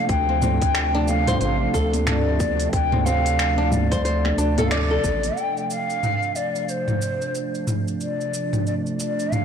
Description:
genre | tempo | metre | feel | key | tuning
organic downtempo | 91 BPM | 4/4 | swing 60% on 16ths | D minor pentatonic | A4 = 440 Hz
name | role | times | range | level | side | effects
breathy mellow ney | melody | 0.0-9.4 s | C5 to G5 | -25 LUFS | left 2 dB | digital delay
warm analog pad | sustained chords | 0.0-9.4 s | C3 to D4 | -27 LUFS | right 1 dB | chorus, sidechain pumping
round analog bass | bass | 0.1-5.3 s | A1 to D2 | -24 LUFS | right 1 dB | transformer saturation, sidechain pumping
electronic kick drum | drums | 0.1-5.2 s | none | -25 LUFS | right 1 dB | none
organic electronic drum kit | drums | 0.1-9.4 s | finger snaps, hi-hat, shaker, toms | -27 LUFS | equal | soft clipping on snare
flamenco guitar | arpeggios | 0.3-5.0 s | C4 to D5 | -28 LUFS | equal | digital delay
congas | percussion | 0.4-5.3 s | none | -32 LUFS | left 2 dB | none
room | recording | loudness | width
moderate concert hall reverb, RT60 2.4 s | blown-out, overdriven recording, overdrive | -20 LUFS | side -7 dB against mid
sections
0.0-5.4 A section; 5.4-9.4 B section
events
band accent 4.7-5.0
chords
0.0 Dm7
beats
| 0.10 0.75 1.41 2.07 | 2.73 3.39 4.05 4.71 | 5.37 6.03 6.69 7.35 | 8.01 8.67 9.33

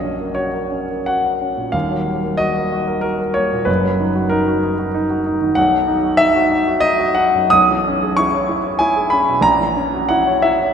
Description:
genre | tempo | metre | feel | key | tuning
classical, romantic character piece for solo piano | 94 BPM | 3/4 | uneven beats, rubato | B major from 5.6 s | A4 = 442 Hz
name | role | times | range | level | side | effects
warm grand piano | solo | 0.0-10.7 s | D#1 to D#6 | -14 LUFS | equal | none
room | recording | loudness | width
wet church reverb, RT60 3.4 s | none | -14 LUFS | side -7 dB against mid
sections
0.0-10.7 A section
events
none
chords
0.0 F#/A#; 1.7 D#m; 3.7 D#m/F#; 5.6 B; 7.5 C#m7/B; 9.4 F#7/A#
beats
0.36 1.07 | 1.74 2.39 3.04 | 3.68 4.32 4.94 | 5.57 6.19 6.82 | 7.52 8.17 8.80 | 9.44 10.08

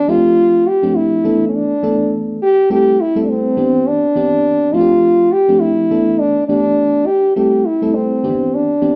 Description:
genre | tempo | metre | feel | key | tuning
funk | 103 BPM | 4/4 | swing 56% on 16ths | unclear | A4 = 438 Hz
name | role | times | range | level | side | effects
mellow French horn | melody | 0.0-9.0 s | C4 to G4 | -15 LUFS | equal | none
FM electric piano | accompaniment | 0.0-9.0 s | D#3 to A4 | -20 LUFS | equal | none
room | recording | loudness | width
moderate large studio reverb, RT60 1.1 s | band playing live in one room | -14 LUFS | mono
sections
0.0-9.0 A section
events
none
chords
0.1 F69; 1.2 E7sus4; 2.7 Am7; 3.6 Cmaj9; 4.7 F69; 5.9 E7sus4; 7.4 Am7; 8.2 Cmaj9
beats
| 0.38 0.96 1.54 2.12 | 2.71 3.29 3.87 4.45 | 5.04 5.62 6.20 6.78 | 7.37 7.95 8.53

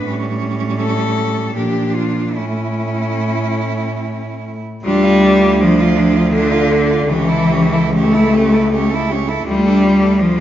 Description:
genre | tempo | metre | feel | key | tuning
classical, lyrical piece for cello ensemble | 68-84 BPM | 3/4 | rubato | D minor | A4 = 440 Hz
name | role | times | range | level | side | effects
rich cello | melody | 0.0-10.4 s | C#4 to A4 | -25 LUFS | left 6 dB | none
clear cello | second line | 0.0-10.4 s | A3 to F4 | -21 LUFS | right 6 dB | none
clear cello | accompaniment | 0.0-10.4 s | D3 to A3 | -15 LUFS | left 1 dB | none
warm cello | bass | 0.0-10.4 s | C#2 to Bb2 | -20 LUFS | right 1 dB | none
room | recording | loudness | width
wet recital hall reverb, RT60 1.4 s | nothing above 7.5 kHz | -13 LUFS | side -11 dB against mid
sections
0.0-4.8 A section; 4.8-10.4 B section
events
none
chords
0.1 A7; 1.6 Bb; 2.4 A; 4.8 Dm; 7.1 A7/C#; 9.5 Dm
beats
| 0.09 0.81 1.58 | 2.39 3.22 4.04 | 4.84 5.61 6.33 | 7.08 7.93 8.72 | 9.47 10.20

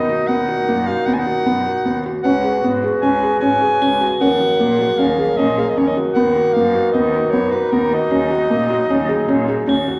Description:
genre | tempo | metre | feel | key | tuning
contemporary instrumental, chamber music in an uneven meter | 153 BPM | 5/4 | straight | Eb minor | A4 = 444 Hz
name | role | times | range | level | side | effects
warm soprano saxophone | melody | 0.0-9.7 s | A#4 to Ab5 | -24 LUFS | equal | none
vibraphone with soft mallets | second line | 0.0-9.8 s | Gb4 to Cb5 | -23 LUFS | equal | none
warm woodwind section | sustained chords | 0.0-9.9 s | A#2 to Gb4 | -30 LUFS | equal | none
felt-muted upright piano | arpeggios | 0.0-10.0 s | A#3 to Ab4 | -21 LUFS | equal | none
warm cello | bass | 0.0-10.0 s | Db2 to Bb2 | -29 LUFS | equal | none
crotales | texture | 3.8-4.4, 9.7-10.0 s | Ab7 | -32 LUFS | equal | none
room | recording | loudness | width
moderate scoring stage reverb, RT60 1.4 s | vinyl crackle, nothing above 10.9 kHz | -17 LUFS | mono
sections
0.0-10.0 A section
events
none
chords
0.0 Bmaj7/D#; 2.3 Db7sus4; 4.2 Ebm9; 6.2 Bmaj7/D#; 8.1 Ebm7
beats
| 0.29 0.69 1.08 1.47 1.86 | 2.25 2.64 3.04 3.43 3.82 | 4.21 4.60 4.99 5.38 5.78 | 6.17 6.56 6.95 7.34 7.73 | 8.12 8.52 8.91 9.30 9.69

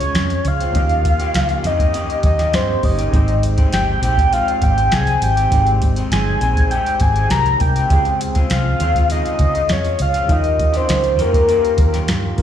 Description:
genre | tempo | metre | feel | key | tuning
indie pop, bedroom pop | 101 BPM | 4/4 | straight | Ab major | A4 = 440 Hz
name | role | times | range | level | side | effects
soft octave-layered synth lead | melody | 0.0-12.4 s | Bb4 to Bb5 | -18 LUFS | left 1 dB | wide subtle chorus, plate reverb, slapback echo, tape echo
electric guitar through a small old amp | accompaniment | 0.0-12.4 s | Db3 to Ab4 | -27 LUFS | left 4 dB | wide subtle chorus, warbly pitch drift, plate reverb, slapback echo
warm analog keys | accompaniment | 0.0-12.4 s | G3 to Eb5 | -30 LUFS | right 4 dB | chorus, plate reverb, slapback echo
vintage muted fingered electric bass | bass | 0.0-12.4 s | G1 to G2 | -19 LUFS | equal | none
soft vintage rhythm box | drums | 0.0-12.4 s | hi-hat, kick drum, snare drum | -19 LUFS | equal | overdrive
room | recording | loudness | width
light reverb | live gig heard through the venue's PA, recital hall reverb | -14 LUFS | side -10 dB against mid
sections
0.0-12.4 A section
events
none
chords
0.0 Dbmaj7; 0.8 Eb7; 3.1 Abmaj7; 7.9 Dbmaj7; 10.3 Eb9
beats
0.16 | 0.75 1.35 1.94 2.54 | 3.13 3.73 4.33 4.92 | 5.52 6.12 6.71 7.31 | 7.90 8.50 9.10 9.69 | 10.29 10.89 11.48 12.08

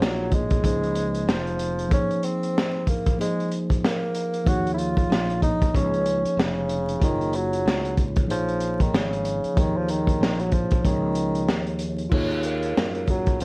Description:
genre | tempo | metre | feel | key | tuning
hip hop, jazz-hop | 94 BPM | 4/4 | swing 60% on 16ths | Eb dorian | A4 = 440 Hz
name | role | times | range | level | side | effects
mellow bassoon | melody | 0.0-13.4 s | Db3 to Gb4 | -27 LUFS | equal | none
mellow tine electric piano | accompaniment | 0.0-13.4 s | F3 to Db5 | -27 LUFS | equal | none
sustaining fretless electric bass | bass | 0.0-13.4 s | F1 to Gb2 | -29 LUFS | equal | none
crunchy breakbeat drum kit | drums | 0.0-13.4 s | crash cymbal, hi-hat, kick drum, snare drum | -23 LUFS | equal | vintage 12-bit sampler grit
room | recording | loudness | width
light reverb | vinyl crackle | -21 LUFS | side -27 dB against mid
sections
0.0-12.1 A section; 12.1-13.4 B section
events
none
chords
0.0 Bb7sus4; 0.6 Db69; 1.9 Bb9sus4/F; 4.5 Ebsus2; 5.7 Db69; 7.0 Gb6; 8.3 Bb7sus4; 9.6 Ebsus2; 10.8 Db69; 12.1 Ebm9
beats
0.00 0.64 1.27 | 1.91 2.55 3.19 3.83 | 4.46 5.10 5.74 6.38 | 7.02 7.66 8.29 8.93 | 9.57 10.21 10.85 11.49 | 12.12 12.76 13.40

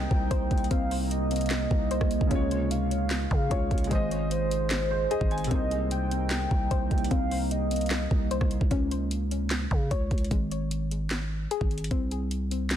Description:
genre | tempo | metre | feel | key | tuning
hip hop, trap | 150 BPM | 4/4 | half-time | C phrygian | A4 = 440 Hz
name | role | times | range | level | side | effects
warm velvety synth lead | second line | 0.0-8.7 s | C5 to G5 | -33 LUFS | right 1 dB | chorus, ping-pong delay
dark grand piano | accompaniment | 0.0-8.7 s | C3 to Ab5 | -36 LUFS | equal | none
deep dark ambient pad | sustained chords | 0.0-8.7 s | C3 to C5 | -35 LUFS | right 3 dB | chorus, built-in reverb
soft round pluck | arpeggios | 0.0-12.8 s | Ab3 to Db5 | -34 LUFS | left 7 dB | chorus, ping-pong delay
growling 808-style bass | bass | 0.0-12.8 s | Ab1 to Db3 | -30 LUFS | equal | none
trap drum kit | drums | 0.1-12.8 s | handclaps, hi-hat, kick drum, rim click, snare drum | -28 LUFS | equal | none
room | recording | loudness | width
little or no reverb | dense, heavily limited modern master | -25 LUFS | side -10 dB against mid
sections
0.0-8.7 A section; 8.7-12.8 B section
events
none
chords
0.0 Cm7; 2.3 Db; 3.9 Ab; 5.5 Cm7; 8.7 N.C.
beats
0.31 | 0.71 1.11 1.51 1.91 | 2.31 2.71 3.11 3.51 | 3.91 4.31 4.71 5.11 | 5.51 5.91 6.31 6.71 | 7.11 7.51 7.91 8.31 | 8.71 9.11 9.51 9.91 | 10.31 10.71 11.11 11.51 | 11.91 12.31 12.71

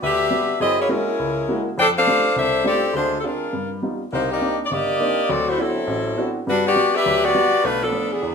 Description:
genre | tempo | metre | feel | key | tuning
jazz | 205 BPM | 4/4 | swing 62% on 8ths | G major | A4 = 441 Hz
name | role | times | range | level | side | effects
warm saxophone section | melody | 0.0-8.3 s | E3 to G5 | -18 LUFS | left 1 dB | none
warm upright piano | accompaniment | 0.0-8.3 s | G1 to F#4 | -25 LUFS | right 1 dB | none
room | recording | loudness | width
moderate large studio reverb, RT60 0.9 s | minimal, uncompressed stereo recording | -18 LUFS | side -6 dB against mid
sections
0.0-8.3 A section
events
none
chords
0.0 Gmaj7; 0.6 F#9; 1.8 F69; 2.9 Dm7b5; 3.5 Gaug7; 4.1 Cm9; 5.3 D13; 6.5 Gmaj7; 7.6 Bm7b5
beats
0.02 0.31 | 0.60 0.90 1.19 1.48 | 1.77 2.07 2.36 2.65 | 2.94 3.24 3.53 3.82 | 4.12 4.41 4.70 4.99 | 5.29 5.58 5.87 6.17 | 6.46 6.75 7.04 7.34 | 7.63 7.92 8.21

